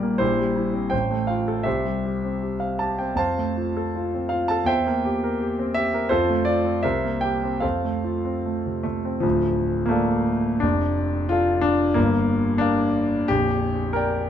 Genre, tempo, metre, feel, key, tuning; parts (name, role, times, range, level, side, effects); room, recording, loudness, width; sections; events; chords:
classical, romantic character piece for solo piano; 72-94 BPM; 2/4; rubato; F major, D minor from 9.2 s; A4 = 442 Hz
warm concert grand piano; solo; 0.0-14.3 s; Bb0 to A5; -20 LUFS; equal
moderate large studio reverb, RT60 1.3 s; -20 LUFS; side -9 dB against mid
0.0-9.2 A section; 9.2-14.3 B section
0.2 C7/Bb; 0.9 F/A; 1.7 C; 3.2 F; 4.7 C7/E; 6.1 F; 6.8 C7; 7.6 F; 9.2 Dm; 10.6 Dm/F; 12.0 Gm7; 13.3 Gm/Bb